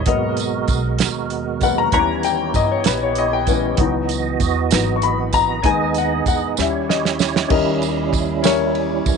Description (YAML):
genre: slow gospel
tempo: 64 BPM (dotted quarters)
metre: 6/8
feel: straight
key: unclear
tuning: A4 = 440 Hz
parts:
  - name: clear grand piano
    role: accompaniment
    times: 0.0-9.2 s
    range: D#3 to C#6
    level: -20 LUFS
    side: left 12 dB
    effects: none
  - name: percussive tonewheel organ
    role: sustained chords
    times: 0.0-9.2 s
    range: B2 to D#5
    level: -22 LUFS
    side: right 14 dB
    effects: slow rotary speaker, overdrive, chorus vibrato
  - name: upright bass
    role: bass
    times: 0.0-9.2 s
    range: G#1 to G2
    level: -25 LUFS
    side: right 1 dB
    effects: none
  - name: warm soul drum kit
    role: drums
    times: 0.1-9.2 s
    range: crash cymbal, hi-hat, kick drum, ride cymbal, snare drum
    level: -21 LUFS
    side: right 4 dB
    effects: none
  - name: tambourine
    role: percussion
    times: 0.4-9.2 s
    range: none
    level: -29 LUFS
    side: right 18 dB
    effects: none
room: light reverb, studio reverb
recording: 1960s-style stereo with parts hard left and right, nothing above 10.8 kHz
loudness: -16 LUFS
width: side -5 dB against mid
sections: 0.0-7.5 A section; 7.5-9.2 B section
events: grand piano solo 0.0-7.5; drum fill 6.6-7.5; tonewheel organ solo 7.5-9.2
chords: 0.1 G#m9; 1.9 D#7b9b13; 3.8 C#m11; 5.6 G#m/D#; 6.6 D#7b9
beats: | 0.07 1.00 | 1.93 2.86 | 3.79 4.72 | 5.65 6.58 | 7.51 8.44